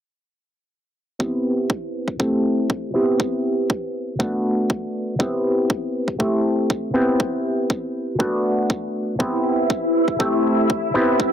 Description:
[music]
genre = filtered disco house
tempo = 120 BPM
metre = 4/4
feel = straight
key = unclear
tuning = A4 = 440 Hz
[part]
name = auto-wah clav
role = accompaniment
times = 1.2-11.3 s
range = A3 to G4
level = -20 LUFS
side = equal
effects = overdrive, phaser, sidechain pumping, low-pass filter
[part]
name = electronic kick drum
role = drums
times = 1.2-11.3 s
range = none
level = -23 LUFS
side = equal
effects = overdrive, high-pass filter on kick
[part]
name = phased string machine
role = sustained chords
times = 9.2-11.3 s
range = E4 to E5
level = -21 LUFS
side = equal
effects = ensemble chorus, phaser, sidechain pumping, low-pass filter
[sound]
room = moderate lush hall reverb, RT60 1.9 s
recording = none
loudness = -19 LUFS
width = side -9 dB against mid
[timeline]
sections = 1.2-11.3 A section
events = filter sweep 1.2-11.3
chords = 1.2 Cmaj7/B; 2.2 Am7; 2.9 Cmaj7/B; 4.2 Bm7; 5.2 Cmaj7/B; 6.2 Am7; 6.9 Cmaj7/B; 8.2 Bm7; 9.2 Cmaj7/B; 10.2 Am7

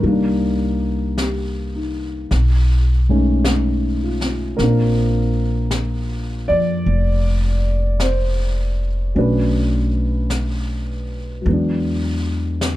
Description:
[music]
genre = jazz ballad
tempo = 52 BPM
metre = 4/4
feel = swing 68% on 8ths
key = unclear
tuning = A4 = 440 Hz
[part]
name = dark concert grand piano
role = accompaniment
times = 0.0-12.8 s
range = Eb3 to D5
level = -21 LUFS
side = equal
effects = none
[part]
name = upright bass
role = bass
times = 0.0-12.8 s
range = F1 to F2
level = -19 LUFS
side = equal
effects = none
[part]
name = jazz brush drum kit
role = drums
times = 0.0-12.8 s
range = brushed snare drum, hi-hat, snare drum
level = -28 LUFS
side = left 2 dB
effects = none
[sound]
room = little or no reverb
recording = dark, warm production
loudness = -17 LUFS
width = side -15 dB against mid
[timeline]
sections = 0.0-12.8 A section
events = none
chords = 0.0 Cm7; 2.3 B13; 4.6 Bb; 9.2 Bm7; 11.5 E9

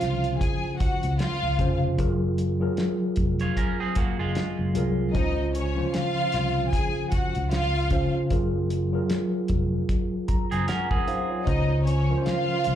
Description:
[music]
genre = lush 1970s-style soul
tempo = 76 BPM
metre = 4/4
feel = swing 58% on 16ths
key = Db major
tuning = A4 = 440 Hz
[part]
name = warm studio string section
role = second line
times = 0.0-12.8 s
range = Db4 to Ab5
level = -28 LUFS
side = right 1 dB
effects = slapback echo
[part]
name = mellow tine electric piano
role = accompaniment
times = 0.0-12.8 s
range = Db3 to Bb5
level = -27 LUFS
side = left 1 dB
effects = medium stereo tremolo, slapback echo
[part]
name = fingered electric bass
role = bass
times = 0.0-12.8 s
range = F1 to Db2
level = -26 LUFS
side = equal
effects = none
[part]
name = cloth-damped thuddy drum kit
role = drums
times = 0.0-12.8 s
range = hi-hat, kick drum, snare drum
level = -27 LUFS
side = equal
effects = none
[part]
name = electric guitar at the edge of break-up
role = riff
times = 3.4-5.1, 10.5-11.4 s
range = Ab3 to Db5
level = -30 LUFS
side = right 5 dB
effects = spring reverb, slapback echo
[sound]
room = light reverb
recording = live gig heard through the venue's PA, club reverb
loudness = -22 LUFS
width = side -10 dB against mid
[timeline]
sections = 0.0-12.8 A section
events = tine electric piano fill 9.9-11.5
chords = 0.0 Dbmaj7; 2.0 Gbmaj9; 5.2 Dbmaj7; 8.3 Gbmaj9; 11.5 Dbmaj7

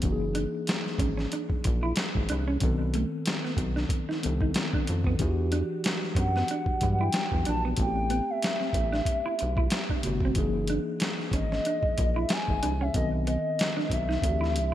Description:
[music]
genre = R&B, neo-soul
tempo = 93 BPM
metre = 4/4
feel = swing 56% on 16ths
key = unclear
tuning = A4 = 445 Hz
[part]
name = mellow tine electric piano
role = accompaniment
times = 0.0-14.7 s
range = C3 to A4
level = -33 LUFS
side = left 2 dB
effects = fast stereo tremolo
[part]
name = rubbery square bass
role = bass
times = 0.0-14.7 s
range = F#1 to G2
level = -29 LUFS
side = equal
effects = none
[part]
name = boom bap sampler-style drum kit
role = drums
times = 0.0-14.7 s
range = hi-hat, kick drum, snare drum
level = -29 LUFS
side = equal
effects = gated reverb
[part]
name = clean electric guitar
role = second line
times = 0.3-14.6 s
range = A3 to E4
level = -35 LUFS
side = right 4 dB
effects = lush chorus, digital delay
[part]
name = hollow clarinet-like synth lead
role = melody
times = 6.2-14.7 s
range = D#5 to A5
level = -30 LUFS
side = left 1 dB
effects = chorus
[sound]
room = light reverb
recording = bright 1980s-style digital production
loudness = -25 LUFS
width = side -12 dB against mid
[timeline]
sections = 0.0-14.7 A section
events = none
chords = 0.0 F#13; 2.6 B7b9; 5.2 Em9; 7.8 Am9; 10.4 F#13; 12.9 B7b9; 14.2 D9sus4

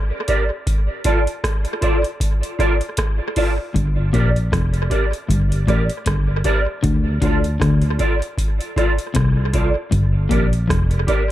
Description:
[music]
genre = roots reggae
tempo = 78 BPM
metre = 4/4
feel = swing 57% on 16ths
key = G minor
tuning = A4 = 439 Hz
[part]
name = mellow electric guitar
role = accompaniment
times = 0.3-11.2 s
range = F4 to D5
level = -23 LUFS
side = right 1 dB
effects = ensemble chorus, tape echo
[part]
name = booming analog drum machine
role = drums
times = 0.3-11.3 s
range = hi-hat, kick drum, rim click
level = -20 LUFS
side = equal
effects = tape echo
[part]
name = electric guitar at the edge of break-up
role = riff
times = 3.7-10.9 s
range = F2 to D3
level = -22 LUFS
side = left 3 dB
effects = none
[part]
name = fingered electric bass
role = bass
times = 3.8-11.1 s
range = F1 to D2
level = -19 LUFS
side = equal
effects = none
[sound]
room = little or no reverb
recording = echo-heavy mix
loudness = -16 LUFS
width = side -14 dB against mid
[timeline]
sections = 0.0-11.3 A section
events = none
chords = 0.0 Gm; 0.7 Dm; 3.7 Gm; 6.8 Dm; 9.9 Gm

